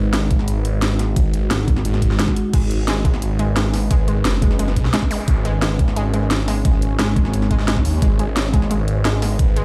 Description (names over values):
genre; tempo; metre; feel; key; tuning
dark technical drum and bass; 175 BPM; 4/4; straight; G# minor; A4 = 439 Hz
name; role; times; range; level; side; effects
deep dark ambient pad; sustained chords; 0.0-9.6 s; G#3 to C#5; -29 LUFS; equal; chorus, built-in reverb, sidechain pumping
phased detuned saw bass; bass; 0.0-9.6 s; F#1 to D#2; -22 LUFS; equal; phaser, tube saturation
drum and bass drum kit; drums; 0.1-9.6 s; crash cymbal, hi-hat, snare drum; -26 LUFS; equal; overdrive
electronic kick drum; drums; 0.3-9.5 s; none; -20 LUFS; equal; overdrive
metallic wobble bass; bass; 1.5-1.8, 7.0-7.8 s; G#1; -22 LUFS; equal; chorus
unison pluck; arpeggios; 2.5-9.6 s; G#3; -29 LUFS; equal; sidechain pumping, digital delay
zap; sound effects; 5.1-5.2 s; none; -34 LUFS; equal; none
room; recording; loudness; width
little or no reverb; played on a big sound system in a bare room, large studio reverb; -18 LUFS; mono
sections
0.0-9.6 A section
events
none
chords
0.0 G#m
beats
0.14 0.48 0.82 | 1.16 1.51 1.85 2.19 | 2.54 2.88 3.22 3.56 | 3.91 4.25 4.59 4.93 | 5.28 5.62 5.96 6.31 | 6.65 6.99 7.33 7.68 | 8.02 8.36 8.71 9.05 | 9.39